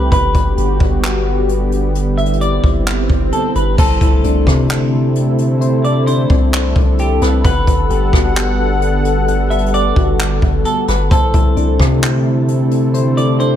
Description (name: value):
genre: hip hop, atmospheric cloud-rap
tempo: 131 BPM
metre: 4/4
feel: half-time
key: C lydian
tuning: A4 = 440 Hz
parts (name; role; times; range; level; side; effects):
- semi-hollow electric guitar; melody; 0.0-13.6 s; G4 to E5; -21 LUFS; equal; lush chorus, tape echo
- dark analog pad; sustained chords; 0.0-13.6 s; D3 to F#5; -18 LUFS; equal; chorus, sidechain pumping
- long sustained 808-style bass; bass; 0.0-13.6 s; G1 to C3; -16 LUFS; equal; none
- jazz brush drum kit; drums; 0.1-13.5 s; crash cymbal, handclaps, hi-hat, kick drum, rim click; -16 LUFS; equal; none
- swell and impact; sound effects; 2.6-5.6 s; none; -26 LUFS; right 1 dB; none
- soft electric-piano-like synth keys; arpeggios; 3.8-13.6 s; C3 to F#5; -22 LUFS; left 7 dB; chorus, tape echo
room: light reverb, small room ambience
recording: none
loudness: -12 LUFS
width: side -10 dB against mid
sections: 0.0-3.8 A section; 3.8-13.6 B section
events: swell 2.6-3.8; impact 3.8-5.6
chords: 0.1 Gmaj7; 3.8 C69; 7.4 Gmaj7; 11.1 C69